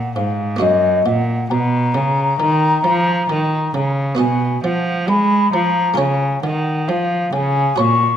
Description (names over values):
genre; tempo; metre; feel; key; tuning
classical, baroque-style sonata movement with continuo; 67 BPM; 4/4; straight; Eb minor; A4 = 441 Hz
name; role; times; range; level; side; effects
mellow hollow baroque flute; melody; 0.0-8.2 s; Eb5 to C#6; -18 LUFS; left 3 dB; none
buff-stop harpsichord; accompaniment; 0.0-8.2 s; Gb2 to Eb5; -24 LUFS; right 3 dB; none
rich cello; bass; 0.0-8.2 s; Gb2 to G#3; -18 LUFS; right 1 dB; none
room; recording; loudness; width
moderate recital hall reverb, RT60 1.4 s; none; -15 LUFS; side -9 dB against mid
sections
0.0-8.2 A section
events
none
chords
0.0 Bb7/Ab; 0.6 Ebm/Gb; 4.2 G#m7/B; 6.0 C#